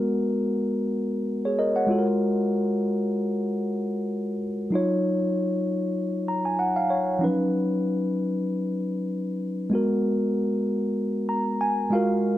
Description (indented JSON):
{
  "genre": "soul",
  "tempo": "96 BPM",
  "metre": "4/4",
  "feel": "swing 54% on 16ths",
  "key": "unclear",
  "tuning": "A4 = 439 Hz",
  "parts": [
    { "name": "mellow tine electric piano", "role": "solo", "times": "0.0-12.4 s", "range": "E#3 to A#5", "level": "-23 LUFS", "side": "equal", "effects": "none" }
  ],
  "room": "light reverb",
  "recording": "none",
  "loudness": "-23 LUFS",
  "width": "side -14 dB against mid",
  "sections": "0.0-12.4 A section",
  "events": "tine electric piano fill 6.0-7.2, 11.0-12.2",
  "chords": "0.0 G#m9; 1.9 F#maj9; 4.7 D#m9; 7.2 C#9sus4; 9.7 G#m9"
}